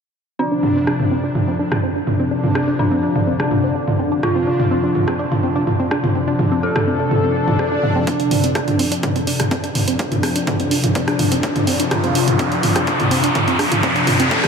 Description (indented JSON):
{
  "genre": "melodic techno",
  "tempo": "125 BPM",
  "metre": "4/4",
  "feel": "straight",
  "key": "D minor",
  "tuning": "A4 = 440 Hz",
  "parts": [
    { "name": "analog synth brass", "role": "melody", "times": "0.4-14.5 s", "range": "D4 to A4", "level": "-24 LUFS", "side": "equal", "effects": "chorus, sidechain pumping, tape echo" },
    { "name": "dark detuned synth bell", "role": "second line", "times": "0.4-8.0 s", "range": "D4 to A4", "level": "-28 LUFS", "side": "equal", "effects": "chorus, sidechain pumping, low-pass filter, tape echo" },
    { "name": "wide unison pluck", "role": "arpeggios", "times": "0.4-14.5 s", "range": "C4 to F4", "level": "-23 LUFS", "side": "right 1 dB", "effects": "sidechain pumping, tape echo" },
    { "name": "brassy analog pad", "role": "stabs", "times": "0.4-14.5 s", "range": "C3 to D4", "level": "-22 LUFS", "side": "left 2 dB", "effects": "chorus, sidechain pumping, tape echo" },
    { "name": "overtone-sweeping drone", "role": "drone", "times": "1.6-8.1 s", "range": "D3", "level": "-33 LUFS", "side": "equal", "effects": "none" },
    { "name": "punchy analog drum machine", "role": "drums", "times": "0.6-14.5 s", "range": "hi-hat, rim click, toms", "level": "-20 LUFS", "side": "right 1 dB", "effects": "overdrive, sidechain pumping on toms, low-pass filter on toms, low-pass filter on snare, sidechain pumping on hats, low-pass filter on hats, low-pass filter on room" },
    { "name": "swell and riser", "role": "sound effects", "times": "7.3-14.5 s", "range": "none", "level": "-22 LUFS", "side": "equal", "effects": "none" },
    { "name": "electronic kick drum", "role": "drums", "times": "8.1-14.4 s", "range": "none", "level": "-26 LUFS", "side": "equal", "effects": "overdrive, high-pass filter on kick, high-pass filter on room" }
  ],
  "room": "moderate huge ambient reverb, RT60 8.0 s",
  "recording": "dreamy mix soaked in reverb",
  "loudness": "-15 LUFS",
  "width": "side -6 dB against mid",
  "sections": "0.4-8.1 A section; 8.1-14.5 B section",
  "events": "filter sweep on analog polysynth 0.4-8.1; filter sweep on synth bell 0.4-8.1; swell 7.3-8.1; build-up 8.1-14.5; riser 8.1-14.5; filter sweep on synth arpeggio sound 8.1-14.5; filter sweep on analog synth pad 8.1-14.5",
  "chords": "0.4 Dm7"
}